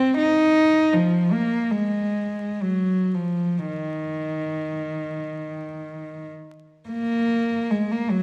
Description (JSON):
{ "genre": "classical, free, expressive piece for unaccompanied cello", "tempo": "42-79 BPM", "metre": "3/4", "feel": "rubato", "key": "unclear", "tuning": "A4 = 440 Hz", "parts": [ { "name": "warm cello", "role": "solo", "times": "0.0-8.2 s", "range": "Eb3 to Eb4", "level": "-23 LUFS", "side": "equal", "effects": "none" } ], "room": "wet recital hall reverb, RT60 1.6 s", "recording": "vinyl crackle", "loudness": "-23 LUFS", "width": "mono", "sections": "0.0-6.9 A section; 6.9-8.2 B section", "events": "none", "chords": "none", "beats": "0.17 | 0.93 1.73 2.62 | 3.68 4.73 5.74 | 6.90 7.71" }